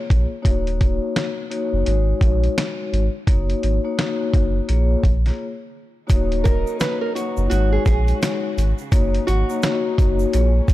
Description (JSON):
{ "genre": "hip hop, boom-bap hip-hop", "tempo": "85 BPM", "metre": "4/4", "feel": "swing 60% on 16ths", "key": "Eb minor", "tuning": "A4 = 440 Hz", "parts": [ { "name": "vibraphone with medium mallets", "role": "accompaniment", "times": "0.0-10.7 s", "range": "Ab3 to Db5", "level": "-24 LUFS", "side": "left 4 dB", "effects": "cassette tape, high-pass filter, low-pass filter" }, { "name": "warm sub bass", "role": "bass", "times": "0.1-10.7 s", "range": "Eb1 to Bb1", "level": "-20 LUFS", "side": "equal", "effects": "none" }, { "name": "dusty soul sampler-style drum kit", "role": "drums", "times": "0.1-10.7 s", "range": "hi-hat, kick drum, snare drum", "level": "-20 LUFS", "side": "equal", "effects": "none" }, { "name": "warm studio string section", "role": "sustained chords", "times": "6.1-10.7 s", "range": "Bb2 to Gb4", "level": "-36 LUFS", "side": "left 1 dB", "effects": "high-pass filter, low-pass filter" }, { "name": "tube shaker", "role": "percussion", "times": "6.1-10.7 s", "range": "none", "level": "-44 LUFS", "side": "right 12 dB", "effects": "none" }, { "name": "nylon-string guitar", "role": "melody", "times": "6.4-10.5 s", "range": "Gb4 to Cb5", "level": "-26 LUFS", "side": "right 3 dB", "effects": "high-pass filter, low-pass filter, ping-pong delay" } ], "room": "little or no reverb", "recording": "dark, warm production", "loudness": "-17 LUFS", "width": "side -15 dB against mid", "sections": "0.0-6.1 A section; 6.1-10.7 B section", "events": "break 5.4-6.1", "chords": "0.5 Ebm7; 1.9 Ab7sus4; 3.3 Ebm7/Gb; 4.7 Bbm7; 6.1 Ebm7; 7.5 Ab7sus4; 8.9 Ebm7/Gb", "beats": "| 0.45 1.16 1.86 2.57 | 3.27 3.98 4.69 5.39 | 6.10 6.80 7.51 8.22 | 8.92 9.63 10.33" }